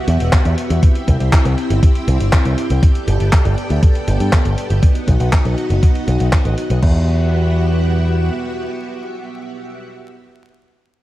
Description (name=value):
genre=italo disco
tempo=120 BPM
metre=4/4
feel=straight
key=E minor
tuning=A4 = 440 Hz
part: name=string machine, full ensemble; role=sustained chords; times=0.0-9.8 s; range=B3 to G5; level=-22 LUFS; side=equal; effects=ensemble chorus
part: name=picked electric bass with an envelope filter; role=bass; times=0.1-8.3 s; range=E1 to G2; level=-16 LUFS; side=equal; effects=none
part: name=clean 12-bit digital drum machine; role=drums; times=0.1-6.9 s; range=crash cymbal, handclaps, hi-hat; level=-24 LUFS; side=equal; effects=studio reverb
part: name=electronic kick drum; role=drums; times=0.3-6.9 s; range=none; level=-12 LUFS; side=equal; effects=studio reverb
room=light reverb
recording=dark, warm production, vinyl crackle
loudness=-13 LUFS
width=side -16 dB against mid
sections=0.0-6.8 A section; 6.8-10.8 B section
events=none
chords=0.0 Emadd9; 0.8 C; 2.8 Gadd9; 4.8 B; 6.8 Emadd9